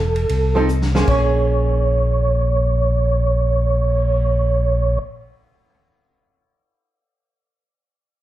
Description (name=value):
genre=soul jazz organ trio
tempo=free time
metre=none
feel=none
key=Bb minor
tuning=A4 = 443 Hz
part: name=percussive tonewheel organ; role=melody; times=0.0-5.0 s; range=A4 to Db5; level=-21 LUFS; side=right 4 dB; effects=slow rotary speaker, chorus vibrato
part: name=tonewheel organ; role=bass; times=0.0-5.0 s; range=E1 to C2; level=-18 LUFS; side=equal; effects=slow rotary speaker
part: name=vintage drum kit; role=drums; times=0.2-4.1 s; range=crash cymbal, cymbal swell, hi-hat, kick drum, ride cymbal, snare drum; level=-24 LUFS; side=left 1 dB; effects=none
part: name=archtop guitar, miked and amplified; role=accompaniment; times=0.6-5.8 s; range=F3 to C5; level=-23 LUFS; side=right 2 dB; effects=none
room=light reverb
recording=none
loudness=-16 LUFS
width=side -14 dB against mid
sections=0.0-1.1 A section; 1.1-4.2 B section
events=drum fill 0.7-1.1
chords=0.0 F (rootless); 1.1 Bbm7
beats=free time